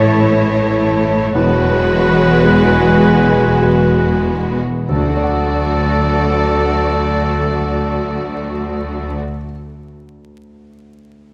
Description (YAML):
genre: cinematic, emotional film score for orchestra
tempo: 46-60 BPM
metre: 3/4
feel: rubato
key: D lydian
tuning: A4 = 438 Hz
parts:
  - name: rich studio violin section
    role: melody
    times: 0.0-9.2 s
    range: B4 to D5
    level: -26 LUFS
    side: equal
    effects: none
  - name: mellow concert flute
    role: second line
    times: 0.0-9.2 s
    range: G#5 to A5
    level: -27 LUFS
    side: equal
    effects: none
  - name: rich studio violin section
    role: second line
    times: 0.0-9.2 s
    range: E4 to F#4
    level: -28 LUFS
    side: equal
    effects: none
  - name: warm clarinet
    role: second line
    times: 0.0-9.2 s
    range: E4 to F#4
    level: -26 LUFS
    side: equal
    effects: none
  - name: warm oboe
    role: second line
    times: 0.0-9.2 s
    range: A4 to C#5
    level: -26 LUFS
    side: equal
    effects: none
  - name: felt-muted upright piano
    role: accompaniment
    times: 0.0-11.3 s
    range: E1 to F#5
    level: -23 LUFS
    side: equal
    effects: none
  - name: rich studio viola section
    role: accompaniment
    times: 0.0-9.2 s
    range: G#3 to A3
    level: -25 LUFS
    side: equal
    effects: none
  - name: dark French horn section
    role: sustained chords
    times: 0.0-9.2 s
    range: E3 to C#5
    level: -24 LUFS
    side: equal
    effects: none
  - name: clear studio double bass section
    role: bass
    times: 0.0-9.2 s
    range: E1 to D2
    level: -23 LUFS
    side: equal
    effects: none
  - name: warm studio cello section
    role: bass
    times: 0.0-9.2 s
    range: D2 to A2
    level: -22 LUFS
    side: equal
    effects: none
room: moderate scoring stage reverb, RT60 2.0 s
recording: vinyl crackle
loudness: -15 LUFS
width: mono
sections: 0.0-4.9 A section; 4.9-8.6 B section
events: slowing down 0.0-4.9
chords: 0.0 A; 1.4 Eadd9; 4.9 D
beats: 0.33 | 1.36 2.45 3.62 | 4.89 6.12 7.34